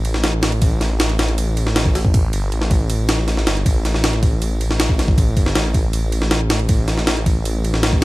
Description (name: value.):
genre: drum and bass, jungle.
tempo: 158 BPM.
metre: 4/4.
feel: straight.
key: unclear.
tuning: A4 = 441 Hz.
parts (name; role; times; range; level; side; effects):
detuned saw bass; bass; 0.0-8.0 s; G1 to A1; -19 LUFS; equal; tube saturation.
breakbeat sampler-style drum kit; drums; 0.0-8.0 s; kick drum, ride cymbal, snare drum; -18 LUFS; equal; none.
room: digital ambience.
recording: none.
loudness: -15 LUFS.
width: side -19 dB against mid.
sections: 0.0-8.0 A section.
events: none.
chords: none.